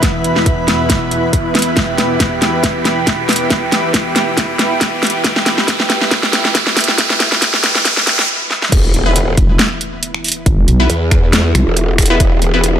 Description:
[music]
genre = heavy wobble dubstep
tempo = 138 BPM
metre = 4/4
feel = swing 54% on 16ths, half-time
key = E minor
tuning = A4 = 440 Hz
[part]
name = lush unison pad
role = sustained chords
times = 0.0-12.8 s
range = E2 to G4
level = -21 LUFS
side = right 1 dB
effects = chorus, sidechain pumping
[part]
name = dubstep drum kit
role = drums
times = 0.0-12.7 s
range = crash cymbal, finger snaps, hi-hat, snare drum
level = -15 LUFS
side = equal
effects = none
[part]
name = electronic kick drum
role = drums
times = 0.0-12.3 s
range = none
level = -15 LUFS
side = equal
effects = none
[part]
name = riser and impact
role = sound effects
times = 0.2-10.5 s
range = none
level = -20 LUFS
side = right 2 dB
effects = none
[part]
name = granular cloud pad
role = texture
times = 0.0-8.3 s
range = E4 to B5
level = -21 LUFS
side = right 1 dB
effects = built-in reverb, sidechain pumping
[part]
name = growl bass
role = bass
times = 8.7-12.8 s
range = E1 to E2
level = -14 LUFS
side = equal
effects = chorus, overdrive
[part]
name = orchestra-hit-like synth stab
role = stabs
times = 9.1-12.6 s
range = B3 to B4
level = -19 LUFS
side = left 2 dB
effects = built-in reverb, tape echo
[part]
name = vowel-sweep wobble bass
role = bass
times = 9.4-11.6 s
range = E1 to B1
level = -13 LUFS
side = equal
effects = chorus, overdrive
[sound]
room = light reverb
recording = high-pass filter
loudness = -11 LUFS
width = side -9 dB against mid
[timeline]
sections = 0.0-8.7 A section; 8.7-12.8 B section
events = build-up 0.0-8.7; drum fill 0.0-8.3, 8.5; filter sweep 0.0-8.7; riser 0.2-8.3; stop 8.3-8.7; drop 8.7-12.8; impact 8.7-10.5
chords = 0.0 E5

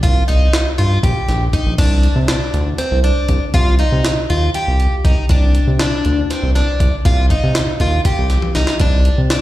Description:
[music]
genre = progressive instrumental, band music in an uneven meter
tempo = 240 BPM (eighths)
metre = 7/8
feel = straight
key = C minor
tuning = A4 = 439 Hz
[part]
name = picked plugged-in twelve-string acoustic guitar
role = arpeggios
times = 0.0-9.4 s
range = C4 to G4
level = -20 LUFS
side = left 1 dB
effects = analog delay, plate reverb, slapback echo
[part]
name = round analog bass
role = bass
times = 0.0-9.4 s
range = Bb1 to C3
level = -14 LUFS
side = equal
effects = none
[part]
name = jungle sampler-style drum kit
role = drums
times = 0.0-9.4 s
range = crash cymbal, hi-hat, kick drum, snare drum, toms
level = -19 LUFS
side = equal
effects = none
[sound]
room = little or no reverb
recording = live gig heard through the venue's PA, recital hall reverb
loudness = -13 LUFS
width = side -15 dB against mid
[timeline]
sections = 0.0-1.8 A section; 1.8-9.4 B section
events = drum fill 8.4-8.8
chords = 0.0 Cm7; 1.8 Csus2; 3.5 Cm; 5.3 Csus2; 7.1 Cm; 8.8 Csus2

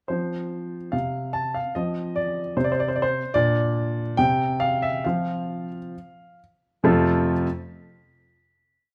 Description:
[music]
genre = classical-period piano sonatina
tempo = 65-76 BPM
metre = 2/4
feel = rubato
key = F major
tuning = A4 = 438 Hz
[part]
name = warm grand piano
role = solo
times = 0.1-7.5 s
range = F2 to A5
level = -24 LUFS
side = equal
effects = none
[sound]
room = light reverb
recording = close, detailed microphones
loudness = -24 LUFS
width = mono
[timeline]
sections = 0.1-6.8 A section; 6.8-8.6 final chord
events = slowing down 2.6-6.8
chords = 0.1 F5; 3.4 Bb; 4.2 N.C.; 5.0 F5; 6.8 F

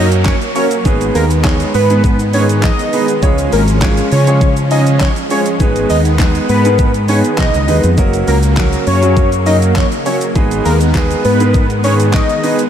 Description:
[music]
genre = dance-pop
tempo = 101 BPM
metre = 4/4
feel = straight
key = unclear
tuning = A4 = 440 Hz
[part]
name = fat analog lead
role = melody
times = 0.0-12.6 s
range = A#4 to D#5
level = -18 LUFS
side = left 1 dB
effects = chorus, phaser, sidechain pumping, ping-pong delay
[part]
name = warm concert grand piano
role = accompaniment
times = 0.0-12.6 s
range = F#3 to D#5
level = -18 LUFS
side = right 3 dB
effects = sidechain pumping
[part]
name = filtered supersaw swell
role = sustained chords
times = 0.0-12.7 s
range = C#3 to C#4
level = -19 LUFS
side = equal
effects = phaser, sidechain pumping
[part]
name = fingered electric bass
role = bass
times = 0.0-12.2 s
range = F#1 to C#3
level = -14 LUFS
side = equal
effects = sidechain pumping
[part]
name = downlifter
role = sound effects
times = 0.0-3.2 s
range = none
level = -31 LUFS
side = right 2 dB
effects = none
[part]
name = pop drum kit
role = drums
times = 0.1-12.7 s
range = handclaps, hi-hat, kick drum, shaker, snare drum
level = -16 LUFS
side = equal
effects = overdrive
[sound]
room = light reverb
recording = none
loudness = -10 LUFS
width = side -9 dB against mid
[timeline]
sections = 0.0-12.7 A section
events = none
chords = 0.0 F#; 0.9 G#m; 3.2 C#; 5.6 G#m; 8.0 F#; 10.4 G#m

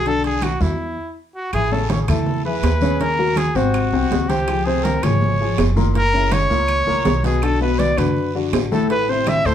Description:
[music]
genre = Afro-Cuban jazz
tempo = 163 BPM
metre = 4/4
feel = straight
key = unclear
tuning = A4 = 440 Hz
[part]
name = warm trumpet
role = melody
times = 0.0-9.5 s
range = E4 to E5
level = -21 LUFS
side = equal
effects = none
[part]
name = warm baby grand piano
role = accompaniment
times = 0.0-9.5 s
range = A2 to C#5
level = -22 LUFS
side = left 3 dB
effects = none
[part]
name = upright bass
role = bass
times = 0.0-9.5 s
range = F#1 to F#2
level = -22 LUFS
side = right 1 dB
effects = none
[part]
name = congas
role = percussion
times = 0.1-9.5 s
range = none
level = -25 LUFS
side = right 1 dB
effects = none
[part]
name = guiro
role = percussion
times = 0.1-9.5 s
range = none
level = -37 LUFS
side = right 6 dB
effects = none
[part]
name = timbales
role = percussion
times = 0.1-9.4 s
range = none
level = -25 LUFS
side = right 2 dB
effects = none
[part]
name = claves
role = percussion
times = 0.4-9.4 s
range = none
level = -36 LUFS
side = left 2 dB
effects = none
[sound]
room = wet studio ambience, RT60 0.5 s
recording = heard from further back in the room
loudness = -16 LUFS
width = side -9 dB against mid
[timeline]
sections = 0.0-1.5 A section; 1.5-9.5 B section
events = stop 0.8-1.5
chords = 0.1 Bm; 0.8 Esus2; 1.5 Amaj7; 3.0 D#m7; 3.7 G#7; 4.5 C#maj7; 6.0 F#7; 7.4 Bm7; 8.9 Am

